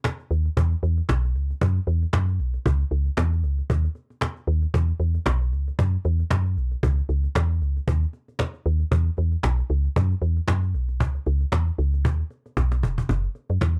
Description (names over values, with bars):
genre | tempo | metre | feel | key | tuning
early-eighties boogie funk | 115 BPM | 4/4 | swing 56% on 16ths | C# minor | A4 = 440 Hz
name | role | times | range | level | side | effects
cajon | drums | 0.0-13.8 s | none | -28 LUFS | equal | none
woody FM bass | bass | 0.3-13.8 s | E1 to F#2 | -24 LUFS | equal | none
room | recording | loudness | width
little or no reverb | dry, close 1970s-style studio recording | -24 LUFS | mono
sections
0.0-13.1 A section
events
drum fill 12.6-13.1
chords
none